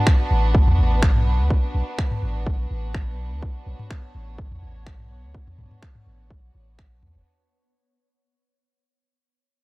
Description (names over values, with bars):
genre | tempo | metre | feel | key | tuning
minimal techno | 125 BPM | 4/4 | straight | B minor | A4 = 439 Hz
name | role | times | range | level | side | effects
bubbling stepped-filter texture | texture | 0.0-7.3 s | B3 to C#5 | -39 LUFS | right 1 dB | chorus, built-in reverb, sidechain pumping
rich chamber string section | texture | 0.0-7.3 s | B3 to F#4 | -31 LUFS | right 2 dB | sidechain pumping
electronic finger snaps | drums | 0.1-6.9 s | none | -29 LUFS | equal | none
electronic kick drum | drums | 0.1-6.9 s | none | -20 LUFS | equal | none
punchy sub bass | bass | 0.3-7.2 s | F#1 to D2 | -23 LUFS | equal | sidechain pumping
electronic toms | percussion | 0.7-7.1 s | none | -24 LUFS | left 1 dB | none
room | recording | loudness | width
little or no reverb | dry, gritty hardware recording, cassette tape | -19 LUFS | side -22 dB against mid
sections
0.0-7.3 A section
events
fade-out 0.0-7.3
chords
0.0 Bm